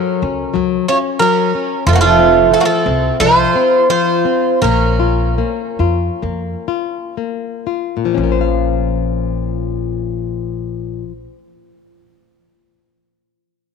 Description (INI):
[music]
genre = fado-style ballad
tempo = 57-92 BPM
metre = 4/4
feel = rubato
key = Bb harmonic minor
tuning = A4 = 435 Hz
[part]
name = Greek bouzouki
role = melody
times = 0.0-7.1 s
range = F4 to Db5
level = -15 LUFS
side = equal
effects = none
[part]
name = picked twelve-string acoustic guitar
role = second line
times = 0.0-7.1 s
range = A3 to F4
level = -18 LUFS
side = right 11 dB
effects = none
[part]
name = flamenco guitar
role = accompaniment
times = 0.0-11.5 s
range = Bb2 to F5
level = -18 LUFS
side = left 12 dB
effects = none
[part]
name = upright bass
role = bass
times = 0.2-11.2 s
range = F1 to F2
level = -19 LUFS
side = right 1 dB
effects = none
[sound]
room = moderate plate reverb, RT60 3.5 s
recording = 1960s-style stereo with parts hard left and right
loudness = -13 LUFS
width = side -6 dB against mid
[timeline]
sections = 0.0-8.2 A section; 8.2-12.3 B section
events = slowing down 1.9-8.2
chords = 0.0 Gb; 1.9 F5; 4.6 Bbm; 8.2 Bbmadd9